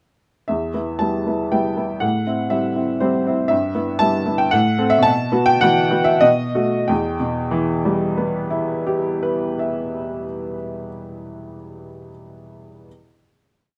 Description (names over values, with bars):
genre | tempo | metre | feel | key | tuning
classical, romantic character piece for solo piano | 86-123 BPM | 3/4 | rubato | E minor | A4 = 436 Hz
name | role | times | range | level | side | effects
warm upright piano | solo | 0.5-12.9 s | E2 to A5 | -20 LUFS | equal | none
room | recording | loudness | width
light reverb | close, detailed microphones | -20 LUFS | mono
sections
0.5-6.9 A section; 6.9-10.6 final chord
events
slowing down 2.8-6.9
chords
0.5 Em; 2.0 Am7; 3.5 Em/G; 4.5 Am; 5.1 Bsus4; 6.2 B7; 6.9 Em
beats
| 0.49 1.01 1.53 | 2.03 2.53 3.02 | 3.52 4.01 4.53 | 5.06 5.63 6.24 | 6.90 7.53 8.16 | 8.78 9.40 10.01